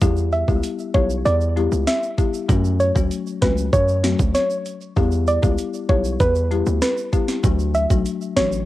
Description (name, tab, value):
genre	dancehall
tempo	97 BPM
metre	4/4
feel	straight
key	E dorian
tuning	A4 = 441 Hz
part	folk marimba with medium mallets	accompaniment	0.0-8.5 s	F#3 to G4	-25 LUFS	left 7 dB	sidechain pumping
part	hard-hitting 808-style bass	bass	0.0-8.6 s	A1 to F#2	-21 LUFS	right 1 dB	none
part	island pop drum kit	drums	0.0-8.5 s	hi-hat, kick drum, rim click, snare drum	-20 LUFS	right 1 dB	overdrive, cassette tape
part	tube shaker	percussion	0.0-8.7 s	none	-40 LUFS	right 8 dB	none
part	soft round pluck	melody	0.3-8.5 s	B4 to E5	-22 LUFS	right 1 dB	chorus, cassette tape
room	little or no reverb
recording	home recording on cassette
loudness	-17 LUFS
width	side -16 dB against mid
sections	0.0-8.7 A section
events	none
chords	0.0 Em; 2.5 F#m; 5.0 Em; 7.4 D